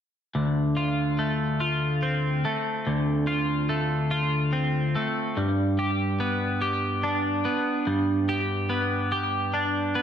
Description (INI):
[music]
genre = rock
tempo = 48 BPM (dotted quarters)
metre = 6/8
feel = straight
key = D dorian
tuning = A4 = 439 Hz
[part]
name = twelve-string electric guitar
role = arpeggios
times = 0.3-10.0 s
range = D2 to G4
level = -23 LUFS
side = equal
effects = analog chorus, slapback echo
[sound]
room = moderate lush hall reverb, RT60 2.1 s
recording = none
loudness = -23 LUFS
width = side -8 dB against mid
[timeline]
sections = 0.4-10.0 A section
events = none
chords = 0.4 Dm7; 5.4 G